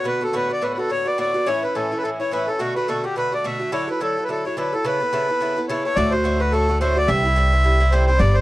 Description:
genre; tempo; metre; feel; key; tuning
celtic folk, Celtic reel; 213 BPM; 4/4; swing 57% on 8ths; A major; A4 = 439 Hz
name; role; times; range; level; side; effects
accordion; melody; 0.0-8.4 s; F#4 to E5; -21 LUFS; equal; none
Irish bouzouki; accompaniment; 0.0-8.4 s; G2 to A4; -25 LUFS; right 1 dB; none
upright bass; bass; 6.0-8.4 s; G1 to D2; -18 LUFS; equal; none
room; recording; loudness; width
little or no reverb; dry, close 1970s-style studio recording; -18 LUFS; side -17 dB against mid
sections
0.0-6.0 A section; 6.0-8.4 B section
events
none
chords
0.3 D6; 1.5 A; 2.6 Bm7; 3.7 Dadd9; 4.8 Aadd9; 6.0 D; 7.1 Cadd9

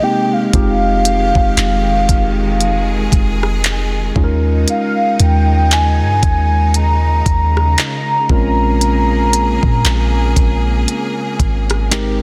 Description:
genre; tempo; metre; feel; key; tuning
contemporary R&B; 58 BPM; 4/4; swing 58% on 16ths; unclear; A4 = 442 Hz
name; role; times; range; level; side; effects
warm velvety synth lead; melody; 0.0-11.9 s; F5 to Bb5; -20 LUFS; equal; chorus, tape echo
mellow tine electric piano; accompaniment; 0.0-12.2 s; Ab3 to Bb4; -22 LUFS; equal; none
bright studio string section; sustained chords; 0.0-12.2 s; C3 to Ab4; -26 LUFS; equal; none
clean 808-style bass; bass; 0.5-12.2 s; F1 to Bb2; -18 LUFS; equal; none
smooth R&B drum kit; drums; 0.5-12.2 s; handclaps, hi-hat, kick drum, rim click; -19 LUFS; equal; none
room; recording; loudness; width
little or no reverb; dense, heavily limited modern master; -14 LUFS; mono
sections
0.0-12.2 A section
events
none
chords
0.0 Abmaj7; 0.5 Fm9; 4.2 Eb7sus4; 8.3 Bbm7

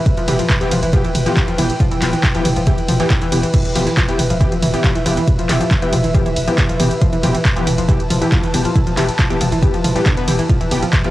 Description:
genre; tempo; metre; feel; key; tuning
driving peak-time techno; 138 BPM; 4/4; straight; E phrygian; A4 = 440 Hz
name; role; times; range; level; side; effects
airy breathy pad; texture; 0.0-11.1 s; E4 to A5; -24 LUFS; equal; chorus, sidechain pumping
electronic kick drum; drums; 0.1-11.0 s; none; -16 LUFS; equal; cassette tape
techno drum kit; drums; 0.1-11.1 s; crash cymbal, handclaps, hi-hat, ride cymbal, toms; -20 LUFS; equal; cassette tape
analog pluck; riff; 0.2-11.1 s; D3 to B3; -21 LUFS; equal; chorus, tube saturation, sidechain pumping, analog delay
saturated sub bass; bass; 0.2-11.1 s; E1; -25 LUFS; equal; overdrive, sidechain pumping, low-pass filter
rave stab; stabs; 0.3-11.1 s; E3 to G4; -23 LUFS; left 2 dB; chorus, built-in reverb, sidechain pumping, analog delay
room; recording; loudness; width
light reverb, digital ambience; home recording on cassette; -13 LUFS; side -16 dB against mid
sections
0.0-11.1 A section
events
none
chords
0.0 Em

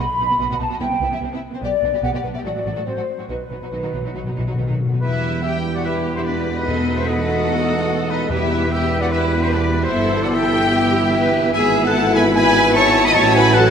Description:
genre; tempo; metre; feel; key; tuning
classical, dramatic, fast romantic movement for symphony orchestra; 147 BPM; 4/4; rubato; E minor; A4 = 440 Hz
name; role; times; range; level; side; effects
rich symphonic violin section; melody; 0.0-13.7 s; D#4 to D#6; -24 LUFS; left 3 dB; none
hollow large flute ensemble; second line; 0.0-4.8 s; B4 to B5; -22 LUFS; left 1 dB; none
rich symphonic violin section; second line; 0.0-13.7 s; B3 to D#5; -24 LUFS; left 2 dB; none
rich symphonic cello section; bass; 0.0-13.7 s; A2 to B4; -27 LUFS; equal; none
rich symphonic double bass section; bass; 0.0-13.7 s; G1 to E2; -25 LUFS; right 3 dB; none
timpani; percussion; 0.0-0.6, 3.3-8.9 s; E2 to B2; -26 LUFS; left 1 dB; none
rich studio viola section; accompaniment; 0.2-13.7 s; F#3 to A4; -26 LUFS; equal; none
bright oboe; second line; 5.0-13.7 s; B4 to B5; -26 LUFS; right 1 dB; none
clear trombone section; sustained chords; 5.0-13.7 s; A2 to A3; -28 LUFS; right 2 dB; none
warm French horn section; sustained chords; 5.0-13.7 s; B3 to F#4; -24 LUFS; left 2 dB; none
warm trumpet section; stabs; 5.0-13.7 s; B4 to B5; -23 LUFS; equal; none
warm tuba; bass; 5.0-13.7 s; E1 to A1; -27 LUFS; right 2 dB; none
room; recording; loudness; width
wet scoring stage reverb, RT60 2.0 s; none; -16 LUFS; side -7 dB against mid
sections
0.0-5.0 A section; 5.0-13.7 B section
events
timpani fill 3.3-5.0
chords
0.0 B; 0.8 Cmaj7; 1.6 G/B (rootless); 2.4 F#dim/A; 3.3 B; 5.0 Em; 6.7 B7/E; 8.3 Em; 9.9 Em/G; 11.5 E/G#; 13.2 F#m7/A

